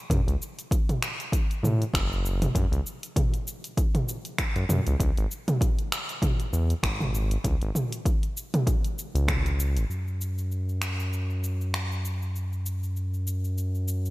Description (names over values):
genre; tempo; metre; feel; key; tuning
organic downtempo; 98 BPM; 4/4; swing 56% on 16ths; C# minor pentatonic; A4 = 441 Hz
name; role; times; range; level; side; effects
round analog bass; bass; 0.1-14.1 s; F#1 to A2; -26 LUFS; equal; sidechain pumping
deep house drum kit; drums; 0.1-14.1 s; cabasa, finger snaps, hi-hat, toms; -30 LUFS; equal; gated reverb
electronic kick drum; drums; 0.1-9.4 s; none; -26 LUFS; equal; none
room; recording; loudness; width
digital ambience; bright 1980s-style digital production; -25 LUFS; side -19 dB against mid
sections
0.0-9.9 A section; 9.9-14.1 B section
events
none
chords
none